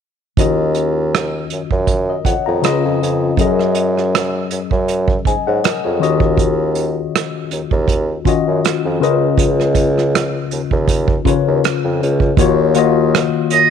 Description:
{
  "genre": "R&B, neo-soul",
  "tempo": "80 BPM",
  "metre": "4/4",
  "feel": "swing 54% on 16ths",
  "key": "Eb minor",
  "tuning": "A4 = 441 Hz",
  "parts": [
    { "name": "tine electric piano", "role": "accompaniment", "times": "0.4-13.7 s", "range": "Db3 to Bb5", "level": "-17 LUFS", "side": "left 9 dB", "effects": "phaser" },
    { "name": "mellow bassoon", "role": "bass", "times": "0.4-13.6 s", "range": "Db2 to Ab2", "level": "-18 LUFS", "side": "right 2 dB", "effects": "none" },
    { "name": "unplugged drum kit", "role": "drums", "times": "0.4-13.7 s", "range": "hi-hat, kick drum, rim click", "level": "-18 LUFS", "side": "right 4 dB", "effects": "none" },
    { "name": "trumpet with metal mute", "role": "melody", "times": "13.5-13.7 s", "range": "Eb5", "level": "-9 LUFS", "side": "right 7 dB", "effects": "none" }
  ],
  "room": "light reverb",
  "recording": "1960s-style stereo with parts hard left and right",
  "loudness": "-14 LUFS",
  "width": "side -7 dB against mid",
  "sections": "0.4-12.4 A section; 12.4-13.7 B section",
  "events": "none",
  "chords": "0.4 Ebm9; 2.6 Db9; 3.4 Gb69; 6.0 Ebm9; 9.0 Db13; 12.4 Ebm9",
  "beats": "| 0.38 1.13 1.88 2.63 | 3.38 4.13 4.88 5.63 | 6.38 7.13 7.88 8.63 | 9.38 10.13 10.88 11.63 | 12.38 13.13"
}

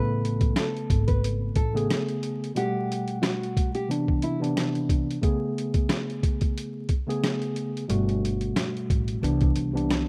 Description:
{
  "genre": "hip hop, boom-bap hip-hop",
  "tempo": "90 BPM",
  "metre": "4/4",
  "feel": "swing 55% on 16ths",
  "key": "A major",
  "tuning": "A4 = 440 Hz",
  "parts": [
    { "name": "nylon-string guitar", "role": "melody", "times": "0.0-4.4 s", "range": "E4 to B4", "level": "-35 LUFS", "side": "equal", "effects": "high-pass filter, low-pass filter, digital delay" },
    { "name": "mellow tine electric piano", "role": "accompaniment", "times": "0.0-10.1 s", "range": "B2 to F#5", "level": "-30 LUFS", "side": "equal", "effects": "cassette tape, high-pass filter, low-pass filter" },
    { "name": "upright bass", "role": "bass", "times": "0.0-1.9, 7.9-10.0 s", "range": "G1 to C2", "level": "-29 LUFS", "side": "equal", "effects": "none" },
    { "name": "boom bap sampler-style drum kit", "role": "drums", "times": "0.2-10.1 s", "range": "hi-hat, kick drum, rim click, snare drum", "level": "-28 LUFS", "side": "equal", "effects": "none" }
  ],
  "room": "small room ambience",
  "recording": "rough home demo mix, vinyl crackle",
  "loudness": "-26 LUFS",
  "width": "mono",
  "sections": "0.0-10.1 A section",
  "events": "none",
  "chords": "0.0 Amaj9; 2.6 Gmaj9; 3.9 Cmaj9; 5.2 Amaj9; 7.9 Gmaj9; 9.2 Cmaj9",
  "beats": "0.56 1.23 1.90 | 2.56 3.23 3.90 4.56 | 5.23 5.90 6.56 7.23 | 7.90 8.56 9.23 9.90"
}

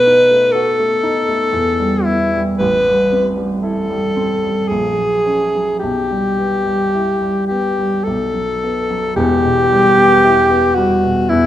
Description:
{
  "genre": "classical, romantic duo for alto saxophone and grand piano",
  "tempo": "53-63 BPM",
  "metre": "3/4",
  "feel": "rubato",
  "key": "E minor",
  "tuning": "A4 = 440 Hz",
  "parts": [
    { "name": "mellow alto saxophone", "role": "melody", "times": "0.0-11.5 s", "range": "E4 to B4", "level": "-14 LUFS", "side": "left 1 dB", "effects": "none" },
    { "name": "warm baby grand piano", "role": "accompaniment", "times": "0.0-11.5 s", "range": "E1 to F#4", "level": "-18 LUFS", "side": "right 1 dB", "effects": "none" }
  ],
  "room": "wet recital hall reverb, RT60 1.5 s",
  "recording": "none",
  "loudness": "-13 LUFS",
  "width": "side -12 dB against mid",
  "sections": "0.0-9.2 A section; 9.2-11.5 B section",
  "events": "none",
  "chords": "0.0 B7; 1.5 Em; 2.6 Am7; 4.7 F#/A#; 5.8 Em/B; 8.1 B5; 9.2 Em",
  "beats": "0.53 1.52 | 2.59 3.62 4.69 | 5.80 6.92 8.05 | 9.16 10.23 11.29"
}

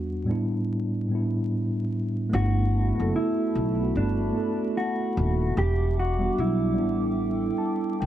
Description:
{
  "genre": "hip hop",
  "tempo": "74 BPM",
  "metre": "4/4",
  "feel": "swing 65% on 16ths",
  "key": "unclear",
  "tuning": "A4 = 439 Hz",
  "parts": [
    { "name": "mellow tine electric piano", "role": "accompaniment", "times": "0.0-8.1 s", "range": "E2 to A5", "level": "-27 LUFS", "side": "equal", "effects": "medium stereo tremolo, cassette tape, low-pass filter" },
    { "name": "mellow electric guitar", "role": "melody", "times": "2.3-8.0 s", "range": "D4 to G4", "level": "-28 LUFS", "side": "right 1 dB", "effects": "low-pass filter" },
    { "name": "warbly tape-like pad", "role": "sustained chords", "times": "2.3-8.1 s", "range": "G3 to D6", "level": "-38 LUFS", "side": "right 1 dB", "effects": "chorus, built-in reverb, low-pass filter" },
    { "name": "upright bass", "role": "bass", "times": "2.3-8.1 s", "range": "D#1 to C2", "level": "-25 LUFS", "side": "equal", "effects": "none" }
  ],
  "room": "light reverb",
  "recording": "vinyl crackle",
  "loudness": "-23 LUFS",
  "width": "side -12 dB against mid",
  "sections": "0.0-2.3 A section; 2.3-8.1 B section",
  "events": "none",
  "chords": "0.3 A7sus4; 2.3 Gmaj13; 5.6 Em9; 6.8 A7sus4",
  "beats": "0.70 1.51 | 2.32 3.13 3.94 4.75 | 5.57 6.38 7.19 8.00"
}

